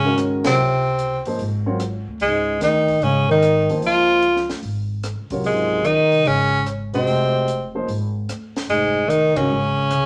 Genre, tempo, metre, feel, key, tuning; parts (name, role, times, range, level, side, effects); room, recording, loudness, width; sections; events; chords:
modal jazz; 148 BPM; 4/4; swing 66% on 8ths; Db major; A4 = 440 Hz
edgy tenor saxophone; melody; 0.0-10.1 s; Ab3 to F4; -21 LUFS; equal
dark bass clarinet; second line; 0.0-10.1 s; Ab2 to F3; -24 LUFS; equal
warm grand piano; accompaniment; 0.0-9.5 s; C3 to Eb5; -26 LUFS; equal
upright bass; bass; 0.0-10.1 s; F1 to Ab2; -30 LUFS; equal
compact cocktail drum kit; drums; 0.2-10.0 s; hi-hat, kick drum, ride cymbal, rim click, snare drum; -33 LUFS; equal
wet studio reverb, RT60 0.8 s; -20 LUFS; mono
0.0-10.1 A section
band accent 0.4, 9.3
0.0 Dbmaj9